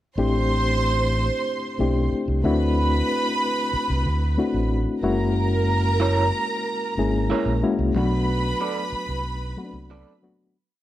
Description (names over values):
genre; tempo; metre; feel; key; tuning
soul; 92 BPM; 4/4; straight; A dorian; A4 = 441 Hz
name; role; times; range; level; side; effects
warm studio string section; second line; 0.2-10.2 s; A#4 to C6; -26 LUFS; right 3 dB; tape echo
mellow reed electric piano; accompaniment; 0.2-10.6 s; F#3 to G#4; -25 LUFS; left 3 dB; fast tremolo
overdriven fingered electric bass; bass; 0.2-10.0 s; F#1 to D2; -23 LUFS; right 1 dB; none
electric guitar through a small old amp; riff; 6.0-10.1 s; E4 to D5; -27 LUFS; right 4 dB; tremolo
room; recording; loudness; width
light reverb; none; -20 LUFS; side -13 dB against mid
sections
0.2-10.6 verse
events
fade-out 8.0-10.6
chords
0.2 Am11; 2.4 D7; 5.0 F#7; 8.0 Bm7